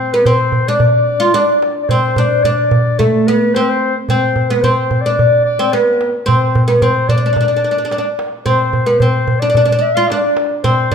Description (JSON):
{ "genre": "Turkish makam ensemble", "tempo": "110 BPM", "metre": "4/4", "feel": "straight", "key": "D makam huseyni", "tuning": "A4 = 438 Hz", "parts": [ { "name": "oud", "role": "melody", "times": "0.0-10.9 s", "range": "A3 to F4", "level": "-14 LUFS", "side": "right 1 dB", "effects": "none" }, { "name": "mellow clarinet", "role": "second line", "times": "0.0-10.9 s", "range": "A4 to F5", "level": "-18 LUFS", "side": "left 5 dB", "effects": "none" }, { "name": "darbuka", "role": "percussion", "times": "0.1-10.9 s", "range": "none", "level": "-16 LUFS", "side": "right 1 dB", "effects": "none" } ], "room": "moderate recital hall reverb, RT60 1.4 s", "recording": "minimal, uncompressed stereo recording", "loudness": "-11 LUFS", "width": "side -6 dB against mid", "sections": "0.0-10.9 A section", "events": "none", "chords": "none" }